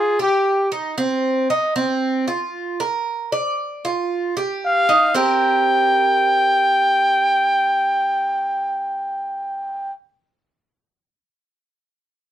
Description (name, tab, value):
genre	latin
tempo	115 BPM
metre	4/4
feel	straight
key	C minor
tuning	A4 = 440 Hz
part	breathy trumpet	melody	0.0-0.7, 4.6-9.9 s	G4 to G5	-17 LUFS	equal	none
part	Cuban tres	arpeggios	0.0-9.9 s	C4 to D5	-21 LUFS	right 3 dB	none
room	light reverb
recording	dark, warm production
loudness	-17 LUFS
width	side -11 dB against mid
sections	0.0-5.1 A section; 5.1-9.3 B section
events	none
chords	0.0 Fsus2; 1.0 Cm; 2.0 F5; 3.1 Bb; 4.1 Fsus2; 5.1 C5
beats	0.46 | 0.98 1.50 2.02 2.54 | 3.06 3.58 4.11 4.63 | 5.15 5.67 6.19 6.71 | 7.23 7.75 8.27 8.79